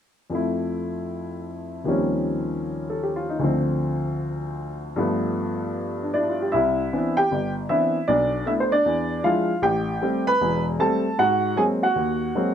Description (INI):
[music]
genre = solo jazz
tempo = 155 BPM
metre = 4/4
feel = swing 65% on 8ths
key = C major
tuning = A4 = 441 Hz
[part]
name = warm upright piano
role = solo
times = 0.3-12.5 s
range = E1 to B5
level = -21 LUFS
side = equal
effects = none
[sound]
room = light reverb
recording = none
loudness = -21 LUFS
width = side -9 dB against mid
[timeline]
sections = 0.3-6.5 A section; 6.5-12.5 B section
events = none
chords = 0.3 Fmaj7; 1.9 Eb13; 3.4 Dm7; 5.0 G9; 6.5 Cmaj9; 8.1 Bmadd11; 8.9 E7b9; 9.6 Am7; 11.2 Ab9